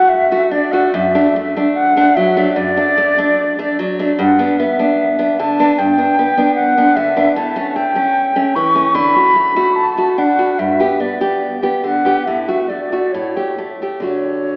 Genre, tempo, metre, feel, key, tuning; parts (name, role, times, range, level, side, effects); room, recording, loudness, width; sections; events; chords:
romantic duo for flute and classical guitar; 62-77 BPM; 4/4; rubato; D major; A4 = 440 Hz
mellow silver concert flute; melody; 0.0-14.6 s; C#5 to C#6; -14 LUFS; equal
nylon-string guitar; accompaniment; 0.0-14.6 s; F#2 to G4; -16 LUFS; equal
wet church reverb, RT60 3.0 s; recorded in a church or concert hall, AM radio sound; -12 LUFS; side -34 dB against mid
0.0-14.6 A section
0.0 D; 0.9 D/F#; 4.2 Em7/G; 7.4 A7; 8.9 D; 10.6 G; 12.3 D/A; 13.1 A7; 14.0 D